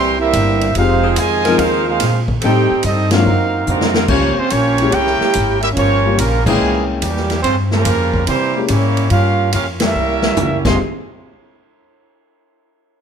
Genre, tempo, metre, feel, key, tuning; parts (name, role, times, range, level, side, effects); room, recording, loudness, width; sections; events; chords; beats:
jazz, big band swing; 143 BPM; 4/4; swing 67% on 8ths; A4 = 440 Hz
clear trumpet section; melody; 0.0-10.8 s; G3 to C6; -18 LUFS; right 2 dB
clear trombone section; second line; 0.0-10.8 s; F2 to G4; -20 LUFS; right 4 dB
mellow saxophone section; sustained chords; 0.0-4.1 s; F3 to A#4; -22 LUFS; left 2 dB
upright bass; bass; 0.0-10.8 s; F1 to C3; -18 LUFS; left 1 dB
swinging big-band drum kit; drums; 0.3-10.7 s; crash cymbal, hi-hat, kick drum, ride cymbal, snare drum, toms; -22 LUFS; left 1 dB
warm grand piano; accompaniment; 0.8-10.8 s; F3 to G5; -20 LUFS; left 5 dB
moderate large studio reverb, RT60 1.3 s; -13 LUFS; side -7 dB against mid
0.0-4.1 A section; 4.1-10.8 B section; 10.8-12.5 C section
band accent 3.1, 6.4, 9.7; drum fill 3.7-4.1, 10.0-10.8
0.0 C7; 0.8 Fm7; 2.4 Am7b5; 3.3 D7alt; 4.1 Gm7b5; 4.9 C7b9b13; 5.8 Gm7b5; 6.6 C7b9b13; 7.4 Gm7b5; 8.3 C7b9b13; 9.1 Gm7b5; 10.0 C7b9; 10.6 Fm7; 10.8 N.C.
0.34 | 0.75 1.17 1.59 2.01 | 2.42 2.84 3.26 3.68 | 4.10 4.51 4.93 5.35 | 5.77 6.19 6.61 7.03 | 7.44 7.86 8.28 8.70 | 9.12 9.54 9.95 10.37